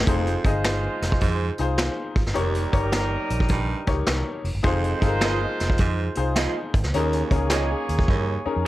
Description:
uptempo 1960s-style soul; 105 BPM; 4/4; swing 66% on 8ths; F minor; A4 = 440 Hz
growling baritone saxophone; riff; 0.0-8.4 s; Eb2 to Ab2; -30 LUFS; right 6 dB
vintage muted fingered electric bass; bass; 0.0-8.6 s; F1 to G2; -26 LUFS; equal
warm horn section; second line; 0.1-8.7 s; G3 to Db5; -30 LUFS; right 2 dB; plate reverb
clear grand piano; accompaniment; 0.1-8.7 s; Db4 to Eb5; -28 LUFS; left 4 dB; plate reverb
vintage brush drum kit; drums; 0.1-8.3 s; hi-hat, kick drum, snare drum; -24 LUFS; equal
finger snaps; percussion; 0.6-7.7 s; -32 LUFS; left 3 dB
electric guitar through a small old amp; stabs; 5.2-8.7 s; F4 to Eb5; -29 LUFS; right 6 dB; plate reverb
light reverb; -21 LUFS; side -16 dB against mid
0.1-8.7 A section
drum fill 8.1-8.7
0.1 Fm7; 2.4 Eb7/F; 4.7 Fm7; 6.9 Eb7sus4

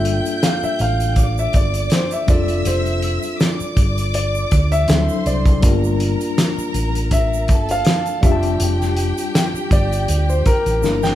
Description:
lush 1970s-style soul; 81 BPM; 4/4; swing 54% on 16ths; A4 = 440 Hz
warm concert grand piano; melody; 0.0-11.2 s; Bb4 to G5; -22 LUFS; equal
warm symphonic violin section; second line; 0.0-11.2 s; G4 to G6; -27 LUFS; equal
tine electric piano; accompaniment; 0.0-11.2 s; F#3 to A5; -24 LUFS; left 3 dB; medium stereo tremolo
hollow-body short-scale fingered electric bass; bass; 0.0-11.2 s; F1 to D2; -20 LUFS; equal
warm soul drum kit; drums; 0.1-11.2 s; hi-hat, kick drum, snare drum; -18 LUFS; equal
egg shaker; percussion; 0.3-11.2 s; -38 LUFS; right 8 dB
light reverb; band playing live in one room; -15 LUFS; side -13 dB against mid
0.0-11.2 A section
grand piano solo 0.0-11.2; drum fill 10.8-11.2
0.0 Gm7; 2.3 F69; 4.9 D7; 5.6 Gm7; 8.2 F69

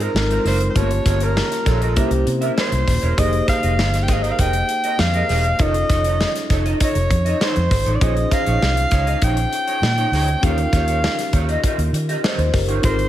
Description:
polished 1980s jazz-funk pop; 99 BPM; 4/4; straight; A4 = 437 Hz
breathy alto saxophone; melody; 0.0-13.1 s; G4 to G5; -22 LUFS; equal
mellow tine electric piano; accompaniment; 0.0-13.1 s; Ab3 to A5; -26 LUFS; left 2 dB; slow stereo tremolo, wide subtle chorus
electric guitar at the edge of break-up; riff; 0.0-13.0 s; Eb4 to F5; -26 LUFS; right 3 dB; analog chorus
vintage muted fingered electric bass; bass; 0.0-13.1 s; Eb1 to Eb3; -20 LUFS; equal
modern studio drum kit; drums; 0.0-13.1 s; hi-hat, kick drum, snare drum; -21 LUFS; equal
light reverb, small room reverb; -16 LUFS; side -12 dB against mid
0.0-13.1 A section
0.0 Ab69; 0.8 Gm7b5; 2.0 C7b9; 3.2 Fm11; 5.6 F7b13; 8.0 Bbm11; 10.4 Eb9

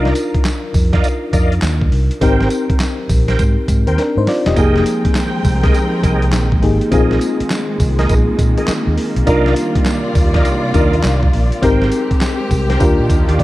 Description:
R&B, new jack swing; 102 BPM; 4/4; swing 64% on 16ths; A4 = 440 Hz
FM electric piano with auto-pan; accompaniment; 0.0-13.4 s; Bb3 to Eb5; -19 LUFS; left 2 dB
bright tonewheel organ; stabs; 0.0-13.4 s; G4 to G5; -24 LUFS; right 2 dB; chorus vibrato, slow rotary speaker, tape echo
vintage muted fingered electric bass; bass; 0.0-13.4 s; E1 to Eb3; -16 LUFS; equal
boom bap sampler-style drum kit; drums; 0.1-13.4 s; handclaps, hi-hat, kick drum, snare drum, tambourine; -17 LUFS; equal
warm symphonic string section; sustained chords; 4.6-13.4 s; C3 to G5; -21 LUFS; right 1 dB
light reverb; dark, warm production; -12 LUFS; side -17 dB against mid
0.0-13.4 A section
drum fill 4.0-4.6
0.0 Cm11; 2.2 Abmaj9; 4.6 Fm11; 6.9 Bb7sus4; 9.3 Cm11; 11.6 Abmaj9; 12.8 Ebmaj9

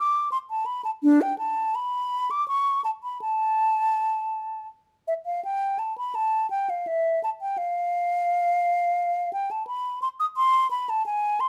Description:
classical, baroque-style fantasia for unaccompanied flute; 83 BPM; 3/4; uneven beats, rubato; A minor; A4 = 440 Hz
mellow hollow silver concert flute; solo; 0.0-11.5 s; D4 to D#6; -25 LUFS; equal
light reverb; -25 LUFS; mono
0.0-5.4 A section; 5.4-11.5 B section

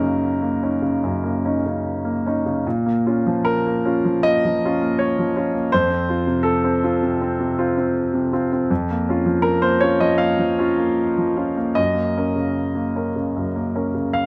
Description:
neoclassical minimalist piano; 79 BPM; 4/4; uneven beats, rubato; Bb harmonic minor; A4 = 439 Hz
warm concert grand piano; solo; 0.0-14.3 s; F2 to F5; -20 LUFS; equal
light reverb; -20 LUFS; mono
0.0-2.6 A section; 2.6-14.3 A section
0.0 Ebm7/Gb; 2.6 Bbm; 5.7 F; 8.7 Bbm/F; 11.8 Ebm7/Gb

